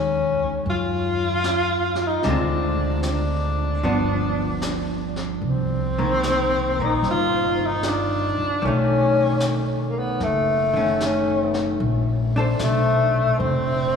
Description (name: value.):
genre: jazz ballad.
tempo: 76 BPM.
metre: 4/4.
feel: swing 69% on 8ths.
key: unclear.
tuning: A4 = 440 Hz.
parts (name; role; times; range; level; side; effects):
breathy tenor saxophone; melody; 0.0-14.0 s; A3 to F4; -22 LUFS; left 2 dB; none.
archtop guitar, miked and amplified; accompaniment; 0.0-14.0 s; D3 to C5; -26 LUFS; left 1 dB; none.
upright bass; bass; 0.0-14.0 s; F1 to Gb2; -25 LUFS; equal; none.
jazz brush drum kit; drums; 0.7-14.0 s; brushed snare drum, hi-hat, snare drum; -36 LUFS; left 2 dB; none.
room: wet cathedral reverb, RT60 4.7 s.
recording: recorded in a church or concert hall, studio ambience.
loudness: -19 LUFS.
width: side -6 dB against mid.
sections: 0.0-14.0 A section.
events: none.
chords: 0.0 Ebm11; 2.2 Dm7b5; 3.8 G7; 5.4 Cm9; 8.6 B9; 11.8 Bbmaj9.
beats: 0.67 1.46 | 2.25 3.04 3.84 4.64 | 5.44 6.24 7.04 7.83 | 8.62 9.42 10.21 11.01 | 11.80 12.59 13.39.